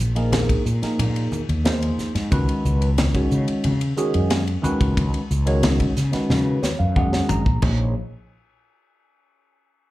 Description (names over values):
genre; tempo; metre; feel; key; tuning
electric jazz fusion; 90 BPM; 4/4; straight; Bb phrygian; A4 = 437 Hz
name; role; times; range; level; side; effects
fretless electric bass; bass; 0.0-7.9 s; Ab1 to Db3; -21 LUFS; equal; none
tine electric piano; accompaniment; 0.2-7.9 s; Eb3 to Bb5; -24 LUFS; equal; phaser
tight funk drum kit; drums; 0.2-7.8 s; crash cymbal, hi-hat, kick drum, ride cymbal, snare drum, toms; -25 LUFS; equal; none
congas; percussion; 0.3-7.9 s; none; -28 LUFS; left 2 dB; none
room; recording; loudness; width
light reverb; live gig heard through the venue's PA, club reverb; -18 LUFS; side -17 dB against mid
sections
0.0-7.6 A section; 7.6-9.9 B section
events
drum fill 6.3-7.6; tine electric piano fill 6.3-7.6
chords
0.0 Bb9sus4; 2.3 Db9sus4; 7.6 Bbm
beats
0.33 0.99 1.66 | 2.32 2.98 3.65 4.31 | 4.97 5.64 6.30 6.96 | 7.63